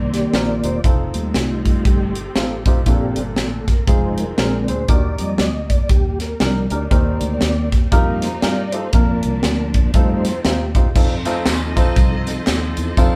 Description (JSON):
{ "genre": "uptempo gospel", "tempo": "119 BPM", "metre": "4/4", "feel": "swing 60% on 8ths", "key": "unclear", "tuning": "A4 = 437 Hz", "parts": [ { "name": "mellow tonewheel organ", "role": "sustained chords", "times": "0.0-13.2 s", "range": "Eb3 to Eb5", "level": "-26 LUFS", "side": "equal", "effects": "slow rotary speaker, chorus vibrato" }, { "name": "rich studio string section", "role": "sustained chords", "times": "0.0-13.2 s", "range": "D3 to Eb5", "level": "-35 LUFS", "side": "equal", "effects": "none" }, { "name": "fingered electric bass", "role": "bass", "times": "0.0-13.2 s", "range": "E1 to G2", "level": "-26 LUFS", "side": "equal", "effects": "none" }, { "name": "crisp fusion drum kit", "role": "drums", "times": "0.1-13.1 s", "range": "crash cymbal, hi-hat, kick drum, snare drum", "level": "-20 LUFS", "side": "equal", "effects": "none" }, { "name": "warm upright piano", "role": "accompaniment", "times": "0.3-13.1 s", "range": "Bb2 to C5", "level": "-27 LUFS", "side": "equal", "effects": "none" }, { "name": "tambourine and handclaps", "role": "percussion", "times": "11.0-13.1 s", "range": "none", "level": "-32 LUFS", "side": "equal", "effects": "none" } ], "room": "moderate studio reverb, RT60 0.8 s", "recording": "band playing live in one room", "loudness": "-18 LUFS", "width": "mono", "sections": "0.0-11.0 A section; 11.0-13.2 B section", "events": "tonewheel organ solo 0.0-11.0", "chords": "0.0 Cm7; 0.8 F7; 2.9 Bbmaj7; 3.9 Fm7; 4.4 Bb9; 4.9 Ebmaj7; 6.9 Cm7; 7.9 F9sus4; 8.9 Bb; 9.9 F7" }